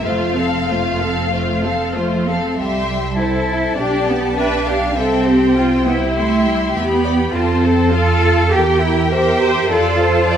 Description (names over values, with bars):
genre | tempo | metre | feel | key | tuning
quick classical-period movement for string orchestra | 101 BPM | 4/4 | rubato | C major | A4 = 438 Hz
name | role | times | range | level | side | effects
rich studio violin section | melody | 0.0-10.4 s | F5 to C6 | -25 LUFS | left 4 dB | none
rich symphonic violin section | second line | 0.0-10.4 s | G4 to G5 | -21 LUFS | left 3 dB | none
rich symphonic viola section | accompaniment | 0.0-10.4 s | A3 to D5 | -20 LUFS | equal | none
rich symphonic cello section | bass | 0.0-10.4 s | F2 to A4 | -18 LUFS | right 1 dB | none
rich symphonic double bass section | bass | 0.0-10.4 s | F1 to F2 | -22 LUFS | right 3 dB | none
room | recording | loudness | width
moderate scoring stage reverb, RT60 1.6 s | none | -14 LUFS | side -9 dB against mid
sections
0.0-2.6 A section; 2.6-10.4 B section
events
none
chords
0.1 F; 2.6 C; 3.8 G7/B; 5.0 C; 7.3 F; 8.5 C7/E; 9.7 F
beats
| 0.06 0.69 1.33 1.95 | 2.58 3.18 3.78 4.37 | 4.97 5.57 6.17 6.76 | 7.34 7.93 8.52 9.11 | 9.70 10.29